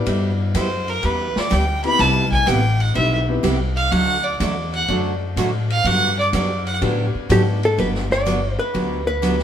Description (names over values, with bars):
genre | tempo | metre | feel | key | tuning
country, western swing | 124 BPM | 4/4 | swing 69% on 8ths | G major | A4 = 436 Hz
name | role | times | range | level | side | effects
warm upright piano | accompaniment | 0.0-7.6 s | A3 to D5 | -27 LUFS | left 3 dB | none
upright bass | bass | 0.0-9.4 s | G1 to A2 | -21 LUFS | left 1 dB | none
picked steel-string acoustic guitar | accompaniment | 0.1-9.4 s | C3 to G4 | -24 LUFS | right 2 dB | none
vintage drum kit | drums | 0.1-9.4 s | hi-hat, kick drum, ride cymbal, snare drum | -29 LUFS | left 2 dB | none
clear fiddle | second line | 0.6-6.8 s | Bb4 to B5 | -20 LUFS | right 1 dB | none
hollow-body jazz guitar | melody | 7.3-9.4 s | G4 to D5 | -20 LUFS | equal | none
room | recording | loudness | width
moderate studio reverb, RT60 0.9 s | band playing live in one room | -17 LUFS | side -9 dB against mid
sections
0.0-7.8 A section; 7.8-9.4 B section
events
fiddle solo 0.0-7.8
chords
0.1 G6; 2.0 Cmaj7; 3.9 D; 5.9 Gmaj7